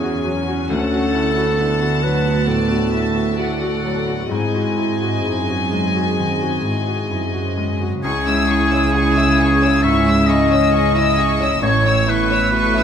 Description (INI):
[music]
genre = cinematic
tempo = 66 BPM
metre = 4/4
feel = rubato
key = C# minor from 8.0 s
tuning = A4 = 440 Hz
[part]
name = rich studio violin section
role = second line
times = 0.0-12.8 s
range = E4 to A5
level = -26 LUFS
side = left 4 dB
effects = none
[part]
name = warm clarinet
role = second line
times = 0.0-12.8 s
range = C#4 to B4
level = -25 LUFS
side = right 1 dB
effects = none
[part]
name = bright baby grand piano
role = accompaniment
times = 0.0-12.8 s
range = A1 to E5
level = -24 LUFS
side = left 2 dB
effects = none
[part]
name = dark symphonic viola section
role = accompaniment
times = 0.0-12.8 s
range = A3 to A4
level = -26 LUFS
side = left 1 dB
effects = none
[part]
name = warm symphonic cello section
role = bass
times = 0.0-12.8 s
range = D2 to C#3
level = -21 LUFS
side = right 3 dB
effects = none
[part]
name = warm symphonic violin section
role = melody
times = 8.0-12.8 s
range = C#6 to E6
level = -23 LUFS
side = left 5 dB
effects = none
[part]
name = clear oboe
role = second line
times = 8.0-12.8 s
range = G#4 to E5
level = -20 LUFS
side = equal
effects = none
[part]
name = concert flute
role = second line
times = 8.0-12.8 s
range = G#4 to E5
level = -26 LUFS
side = left 3 dB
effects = none
[part]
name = warm French horn section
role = sustained chords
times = 8.0-12.8 s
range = G#3 to D#5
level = -24 LUFS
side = left 6 dB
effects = none
[part]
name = rich symphonic double bass section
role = bass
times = 8.0-12.8 s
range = A1 to C#2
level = -21 LUFS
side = right 2 dB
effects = none
[sound]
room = moderate scoring stage reverb, RT60 1.8 s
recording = none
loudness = -15 LUFS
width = side -8 dB against mid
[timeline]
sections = 0.0-8.0 A section; 8.0-12.8 B section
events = none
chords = 0.0 F#5; 0.7 D; 4.3 G#7; 8.0 C#m; 11.6 A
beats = | 0.71 1.59 2.48 3.39 | 4.32 5.25 6.19 7.11 | 8.04 8.94 9.84 10.73 | 11.63 12.53